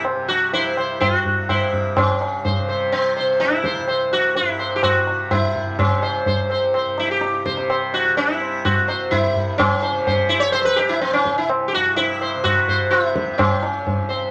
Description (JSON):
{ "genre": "indian classical, Hindustani", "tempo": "126 BPM", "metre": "4/4", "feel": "straight", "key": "C major", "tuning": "A4 = 440 Hz", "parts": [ { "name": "sitar", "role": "melody", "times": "0.0-14.3 s", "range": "C4 to Db5", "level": "-21 LUFS", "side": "equal", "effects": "none" }, { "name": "tanpura", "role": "drone", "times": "0.0-14.3 s", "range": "C2 to C3", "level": "-31 LUFS", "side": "equal", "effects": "none" }, { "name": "tabla", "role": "percussion", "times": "0.0-14.3 s", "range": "none", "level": "-25 LUFS", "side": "equal", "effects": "none" } ], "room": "moderate club reverb, RT60 0.8 s", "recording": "none", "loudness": "-20 LUFS", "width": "mono", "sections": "0.0-2.0 A section; 2.0-14.3 B section", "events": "none", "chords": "none" }